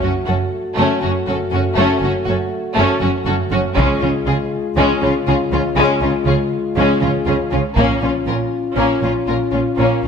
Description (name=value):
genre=cinematic, epic orchestral film score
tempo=120 BPM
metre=4/4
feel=straight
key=unclear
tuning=A4 = 440 Hz
part: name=rich studio violin section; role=melody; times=0.0-10.1 s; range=Db4 to Bb4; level=-24 LUFS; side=left 5 dB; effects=none
part: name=warm symphonic violin section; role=second line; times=0.0-10.1 s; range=Ab3 to Gb4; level=-21 LUFS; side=left 3 dB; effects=none
part: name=warm studio viola section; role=accompaniment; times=0.0-10.1 s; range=Db4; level=-22 LUFS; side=right 1 dB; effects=none
part: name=mellow French horn section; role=sustained chords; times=0.0-10.1 s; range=Ab3 to Gb4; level=-22 LUFS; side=left 4 dB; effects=none
part: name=rich symphonic cello section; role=bass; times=0.0-10.1 s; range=Gb2 to Db3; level=-23 LUFS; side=right 4 dB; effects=none
part: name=warm symphonic double bass section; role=bass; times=0.0-10.1 s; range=Gb1 to Db2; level=-22 LUFS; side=right 4 dB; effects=none
part: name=taiko ensemble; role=drums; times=3.8-4.7, 7.8-8.7 s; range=none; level=-24 LUFS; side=right 1 dB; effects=none
room=moderate scoring stage reverb, RT60 1.7 s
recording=none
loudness=-15 LUFS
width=side -6 dB against mid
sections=0.0-10.1 A section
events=build-up 0.0-10.1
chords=0.0 Gbm; 3.8 Db; 7.8 Bbm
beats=0.27 0.77 1.27 | 1.77 2.27 2.77 3.27 | 3.77 4.26 4.76 5.26 | 5.76 6.26 6.76 7.26 | 7.76 8.26 8.77 9.27 | 9.79